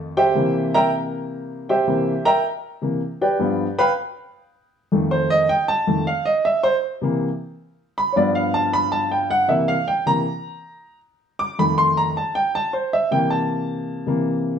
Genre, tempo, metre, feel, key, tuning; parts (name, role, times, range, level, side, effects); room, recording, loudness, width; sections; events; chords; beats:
jazz; 158 BPM; 4/4; straight; C mixolydian; A4 = 440 Hz
warm baby grand piano; solo; 0.0-14.6 s; F2 to D6; -18 LUFS; equal
wet stone room reverb, RT60 1.0 s; band playing live in one room; -18 LUFS; side -8 dB against mid
0.0-9.5 A section; 9.5-14.6 A section
grand piano solo 0.0-14.6
0.4 C7; 3.4 G7; 4.9 F7; 6.4 C7; 8.0 G7; 9.5 C7; 11.0 F7; 12.5 C7
| 0.36 0.74 1.12 1.50 | 1.88 2.26 2.64 3.02 | 3.40 3.78 4.16 4.54 | 4.92 5.30 5.68 6.06 | 6.45 6.83 7.21 7.59 | 7.97 8.35 8.73 9.11 | 9.49 9.87 10.25 10.64 | 11.02 11.40 11.78 12.16 | 12.54 12.92 13.30 13.69 | 14.07 14.45